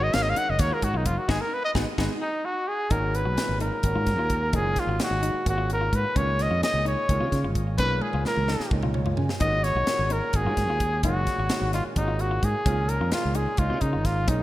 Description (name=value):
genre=electric jazz fusion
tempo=259 BPM (eighths)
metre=7/8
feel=straight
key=G# dorian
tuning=A4 = 440 Hz
part: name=mellow trumpet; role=melody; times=0.0-14.4 s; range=D#4 to F#5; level=-26 LUFS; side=equal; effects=none
part: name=clear concert grand piano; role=accompaniment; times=0.0-14.4 s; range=A#2 to G#5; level=-33 LUFS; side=right 2 dB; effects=none
part: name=clean electric guitar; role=stabs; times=0.0-14.4 s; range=C#4 to G#4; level=-36 LUFS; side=left 4 dB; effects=wide subtle chorus, digital delay
part: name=fingered electric bass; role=bass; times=0.0-14.4 s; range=F#1 to C#3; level=-27 LUFS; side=equal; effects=none
part: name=crisp fusion drum kit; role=drums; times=0.1-14.4 s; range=hi-hat, kick drum, snare drum, toms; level=-28 LUFS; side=equal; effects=gated reverb
room=moderate lush hall reverb, RT60 1.6 s, small room ambience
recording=bright 1980s-style digital production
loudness=-22 LUFS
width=side -15 dB against mid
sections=0.0-2.9 A section; 2.9-14.4 B section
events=trumpet solo 0.0-2.9; drum fill 1.3-2.9, 8.0-9.4; band accent 1.3-2.9; grand piano fill 2.2-2.9, 8.7-9.4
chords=0.0 G#9sus4; 6.2 C#69; 9.4 G#9sus4; 12.7 C#69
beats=0.14 0.37 0.60 0.83 1.06 | 1.29 1.52 1.75 1.99 2.22 2.45 2.68 | 2.91 3.15 3.38 3.61 3.84 4.07 4.31 | 4.54 4.77 5.00 5.24 5.47 5.70 5.93 | 6.16 6.40 6.63 6.86 7.09 7.32 7.56 | 7.79 8.02 8.25 8.48 8.72 8.95 9.18 | 9.41 9.64 9.88 10.11 10.34 10.57 10.80 | 11.04 11.27 11.50 11.73 11.96 12.20 12.43 | 12.66 12.89 13.12 13.36 13.59 13.82 14.05 | 14.29